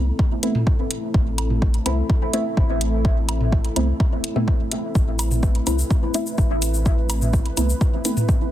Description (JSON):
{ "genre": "dub techno", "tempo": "126 BPM", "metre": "4/4", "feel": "straight", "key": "A minor", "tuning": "A4 = 442 Hz", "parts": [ { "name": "dark analog pad", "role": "sustained chords", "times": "0.0-8.5 s", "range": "A3 to B4", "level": "-30 LUFS", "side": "right 1 dB", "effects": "chorus, sidechain pumping" }, { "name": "deep mellow chord stab", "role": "stabs", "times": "0.0-8.1 s", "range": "A3 to E4", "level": "-26 LUFS", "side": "equal", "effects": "chorus, phaser, sidechain pumping, dub echo" }, { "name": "pure sine sub bass", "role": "bass", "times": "0.0-7.7 s", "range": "A1 to C2", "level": "-22 LUFS", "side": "equal", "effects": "sidechain pumping" }, { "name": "electronic kick drum", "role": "drums", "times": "0.2-8.4 s", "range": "none", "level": "-19 LUFS", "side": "equal", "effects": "overdrive" }, { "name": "electronic hi-hat and shaker", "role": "drums", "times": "0.4-8.4 s", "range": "none", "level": "-27 LUFS", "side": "left 2 dB", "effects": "overdrive" }, { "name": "electronic toms and woodblock", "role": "percussion", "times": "0.6-8.3 s", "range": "none", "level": "-28 LUFS", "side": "right 1 dB", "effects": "sidechain pumping on perc, sidechain pumping on toms, dub echo" } ], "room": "little or no reverb", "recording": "dense, heavily limited modern master", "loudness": "-18 LUFS", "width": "side -13 dB against mid", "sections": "0.0-8.5 A section", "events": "filter sweep on synth stab 0.0-8.5", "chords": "0.0 Amadd9" }